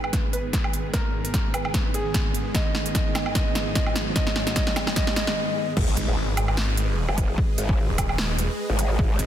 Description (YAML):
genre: heavy wobble dubstep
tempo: 149 BPM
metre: 4/4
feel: swing 55% on 16ths, half-time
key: G# minor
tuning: A4 = 439 Hz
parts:
  - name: felt-muted upright piano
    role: melody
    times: 0.0-5.4 s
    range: G#4 to D#5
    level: -31 LUFS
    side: right 1 dB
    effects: ping-pong delay
  - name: supersaw chords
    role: sustained chords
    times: 0.0-9.3 s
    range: G#2 to D#5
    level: -32 LUFS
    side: right 1 dB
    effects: sidechain pumping, low-pass filter
  - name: big-room dance drum kit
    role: drums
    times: 0.0-9.3 s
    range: crash cymbal, hi-hat, snare drum, woodblock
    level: -27 LUFS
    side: right 1 dB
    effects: overdrive
  - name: riser and impact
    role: sound effects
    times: 1.3-7.4 s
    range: none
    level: -33 LUFS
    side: equal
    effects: none
  - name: electronic kick drum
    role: drums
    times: 0.1-9.1 s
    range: none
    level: -25 LUFS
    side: equal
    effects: overdrive
  - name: growl bass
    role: bass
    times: 5.8-9.2 s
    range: F#1 to G#1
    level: -24 LUFS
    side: equal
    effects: chorus, overdrive
  - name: snarling distorted saw bass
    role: bass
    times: 6.0-9.3 s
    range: D#1 to G#1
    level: -24 LUFS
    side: equal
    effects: distortion, overdrive
room: light reverb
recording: dense, heavily limited modern master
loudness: -21 LUFS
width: side -11 dB against mid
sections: 0.0-5.8 A section; 5.8-9.3 B section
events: build-up 0.0-5.8; drum fill 0.0-5.4; riser 1.3-5.4; break 5.4-5.8; drop 5.8-9.3; impact 5.8-7.4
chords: 0.0 G#m